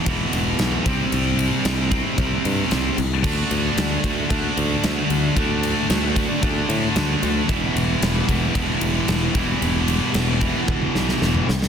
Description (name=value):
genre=hard rock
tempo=113 BPM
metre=4/4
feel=straight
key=E minor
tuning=A4 = 440 Hz
part: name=high-gain distorted guitar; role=riff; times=0.0-11.5 s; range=E2 to D4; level=-25 LUFS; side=right 12 dB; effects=distortion
part: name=scooped high-gain guitar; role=riff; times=0.0-11.5 s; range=E2 to D4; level=-25 LUFS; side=left 11 dB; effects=distortion
part: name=modern bright picked electric bass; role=bass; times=0.1-11.7 s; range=E1 to A2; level=-24 LUFS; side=equal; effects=none
part: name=huge arena drum kit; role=drums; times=0.1-11.7 s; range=crash cymbal, kick drum, ride cymbal, snare drum, toms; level=-24 LUFS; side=equal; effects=soft clipping on kick
part: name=distorted electric guitar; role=riff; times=3.2-11.5 s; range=D3 to F#4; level=-29 LUFS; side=equal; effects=distortion
room=small room reverb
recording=dense, heavily limited modern master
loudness=-18 LUFS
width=side -7 dB against mid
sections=0.0-11.7 A section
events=drum fill 10.7-11.7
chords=0.0 E5; 0.9 C5; 3.2 D; 7.5 Em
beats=0.07 0.59 | 1.12 1.65 2.18 2.71 | 3.24 3.77 4.30 4.83 | 5.37 5.90 6.43 6.96 | 7.49 8.02 8.56 9.09 | 9.62 10.15 10.69 11.22